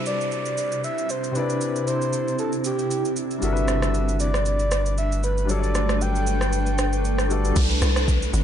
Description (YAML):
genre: amapiano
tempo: 116 BPM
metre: 4/4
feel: swing 55% on 16ths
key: C lydian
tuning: A4 = 439 Hz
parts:
  - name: breathy flute-like synth lead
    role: melody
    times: 0.0-7.3 s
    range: G4 to G5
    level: -28 LUFS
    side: right 1 dB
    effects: chorus, ping-pong delay
  - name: clear concert grand piano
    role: accompaniment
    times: 0.0-7.6 s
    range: C3 to D5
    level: -29 LUFS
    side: left 4 dB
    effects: none
  - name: granular cloud pad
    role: sustained chords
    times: 0.0-8.4 s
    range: C3 to B4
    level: -28 LUFS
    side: right 2 dB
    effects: built-in reverb, sidechain pumping
  - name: downlifter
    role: sound effects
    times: 0.0-3.4, 7.6-8.4 s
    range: none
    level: -34 LUFS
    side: right 1 dB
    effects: none
  - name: deep house drum kit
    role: drums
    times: 0.1-8.4 s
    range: crash cymbal, kick drum, rim click, shaker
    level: -28 LUFS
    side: right 1 dB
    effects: overdrive
  - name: warm sub bass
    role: bass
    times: 3.4-7.5 s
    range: G1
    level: -24 LUFS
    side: equal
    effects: none
  - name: tight log drum bass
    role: bass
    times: 7.6-8.4 s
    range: G1 to C2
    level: -21 LUFS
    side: equal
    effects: none
room: little or no reverb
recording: nothing above 11.0 kHz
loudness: -21 LUFS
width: side -9 dB against mid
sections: 0.0-7.6 A section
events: none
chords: 0.0 Cmaj9; 3.4 Gmaj9; 7.6 Cmaj9